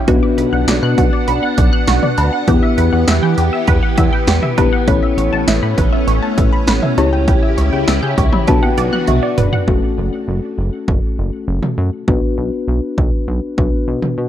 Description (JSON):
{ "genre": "synth-pop", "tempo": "100 BPM", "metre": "4/4", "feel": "straight", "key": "B minor", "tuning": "A4 = 438 Hz", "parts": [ { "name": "soft string machine", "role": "sustained chords", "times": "0.0-9.7 s", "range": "C#3 to F#5", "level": "-21 LUFS", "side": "equal", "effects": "phaser, ensemble chorus" }, { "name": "muted felt-like synth keys", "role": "accompaniment", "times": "0.1-14.3 s", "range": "A3 to C#6", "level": "-20 LUFS", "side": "left 5 dB", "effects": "chorus" }, { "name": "resonant blip pluck", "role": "arpeggios", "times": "0.1-9.6 s", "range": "F#4 to G6", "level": "-22 LUFS", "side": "right 3 dB", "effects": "chorus, phaser, tape echo" }, { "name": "chorused synth bass", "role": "bass", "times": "0.1-14.3 s", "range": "E1 to E3", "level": "-17 LUFS", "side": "equal", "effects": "none" }, { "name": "punchy analog drum machine", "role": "drums", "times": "0.1-14.2 s", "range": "cowbell, hi-hat, kick drum, snare drum, toms", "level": "-16 LUFS", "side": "right 1 dB", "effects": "none" } ], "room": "light reverb, digital ambience", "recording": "dark, warm production", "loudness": "-13 LUFS", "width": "side -11 dB against mid", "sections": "0.0-9.7 A section; 9.7-14.3 B section", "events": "synth keys fill 7.9-9.7; drum fill 8.5-9.7", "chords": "0.1 Bm; 2.5 Emadd9; 4.9 Aadd9; 7.0 C#dim; 8.5 Bm; 9.7 F#m; 12.1 Bm" }